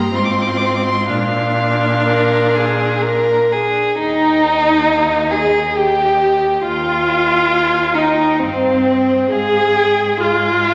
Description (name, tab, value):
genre	classical, slow romantic movement for string quartet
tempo	61-69 BPM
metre	3/4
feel	rubato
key	Eb major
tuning	A4 = 440 Hz
part	dark violin	melody	0.0-10.7 s	Eb5 to D6	-27 LUFS	equal	none
part	warm violin	second line	0.0-10.7 s	C4 to Bb4	-18 LUFS	equal	none
part	rich viola	accompaniment	0.0-10.7 s	C4 to Ab4	-20 LUFS	equal	none
part	rich cello	bass	0.0-10.7 s	Eb2 to Bb2	-25 LUFS	equal	none
room	wet scoring stage reverb, RT60 1.5 s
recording	none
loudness	-15 LUFS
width	mono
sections	0.0-4.0 A section; 4.0-10.7 B section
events	none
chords	0.1 Fm/Ab; 1.1 Bb; 4.0 Eb; 6.7 Cm/Eb; 9.3 Fm/Ab